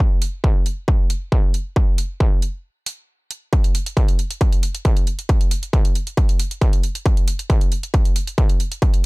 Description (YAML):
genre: techno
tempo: 136 BPM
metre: 4/4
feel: straight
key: none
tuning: none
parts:
  - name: electronic kick drum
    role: drums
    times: 0.0-8.9 s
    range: none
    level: -16 LUFS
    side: equal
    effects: distortion, overdrive
  - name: electronic hi-hat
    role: drums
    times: 0.2-9.0 s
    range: none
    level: -29 LUFS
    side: right 3 dB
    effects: overdrive
room: little or no reverb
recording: dark, warm production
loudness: -17 LUFS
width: side -26 dB against mid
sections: 0.0-9.1 A section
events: break 2.6-3.5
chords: none